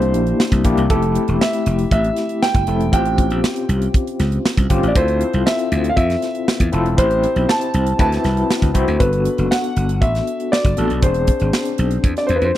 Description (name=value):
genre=polished 1980s jazz-funk pop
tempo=118 BPM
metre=4/4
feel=straight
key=A minor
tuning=A4 = 438 Hz
part: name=warm concert grand piano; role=melody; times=0.0-12.5 s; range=A4 to A5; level=-22 LUFS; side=equal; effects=slapback echo
part: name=overdriven tine electric piano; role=accompaniment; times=0.0-12.6 s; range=A3 to C5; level=-21 LUFS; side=left 3 dB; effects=medium tremolo, wide subtle chorus
part: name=slap bass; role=bass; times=0.0-12.5 s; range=E1 to F2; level=-19 LUFS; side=equal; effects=none
part: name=crisp fusion drum kit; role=drums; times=0.0-12.6 s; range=hi-hat, kick drum, snare drum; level=-19 LUFS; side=right 1 dB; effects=none
room=little or no reverb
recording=dry, close 1970s-style studio recording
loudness=-15 LUFS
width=side -13 dB against mid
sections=0.0-12.6 A section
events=none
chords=0.0 C7; 0.9 Fmaj9; 2.9 A7alt; 5.0 Dm9; 7.0 Am7; 8.0 D13; 9.0 Gmaj7; 11.0 E7b13